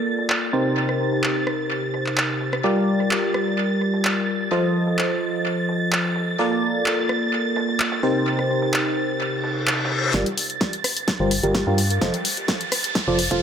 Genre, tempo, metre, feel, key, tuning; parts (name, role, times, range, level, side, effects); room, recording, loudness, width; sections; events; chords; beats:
piano house; 128 BPM; 4/4; straight; C dorian; A4 = 440 Hz
analog string pad; sustained chords; 0.0-13.4 s; A6; -28 LUFS; right 2 dB; ensemble chorus, sidechain pumping
barking FM electric piano; riff; 0.0-13.4 s; C3 to F5; -22 LUFS; equal; chorus, sidechain pumping, low-pass filter, analog delay
dusty soul sampler-style drum kit; drums; 0.1-10.1 s; hi-hat, shaker, snare drum; -42 LUFS; equal
house drum kit; drums; 0.3-13.4 s; handclaps, hi-hat, rim click, snare drum; -25 LUFS; equal; low-pass filter on snare, low-pass filter on hats, analog delay
reverse cymbal and riser; sound effects; 9.4-13.4 s; -29 LUFS; left 3 dB
organ-like FM bass; bass; 10.1-13.4 s; F1 to G2; -24 LUFS; equal; sidechain pumping
electronic kick drum; drums; 10.1-13.4 s; -25 LUFS; equal; high-pass filter on kick
wet spring reverb, RT60 1.5 s; echo-heavy mix; -19 LUFS; side -8 dB against mid
0.0-10.1 A section; 10.1-13.4 B section
filter sweep on FM electric piano 0.0-10.1, 10.1-13.4; filter sweep on analog synth pad 0.0-10.1; reverse cymbal 9.4-10.1; build-up 10.1-13.4; drum fill 10.1-13.4; riser 10.1-13.4
0.0 Bbmaj7; 0.5 Cm7; 2.6 Gm7; 4.5 F7; 6.4 Bbmaj7; 8.0 Cm7; 10.1 Gm7; 12.0 F
0.30 | 0.77 1.23 1.70 2.17 | 2.64 3.11 3.58 4.05 | 4.52 4.98 5.45 5.92 | 6.39 6.86 7.33 7.80 | 8.27 8.73 9.20 9.67 | 10.14 10.61 11.08 11.55 | 12.02 12.48 12.95 13.42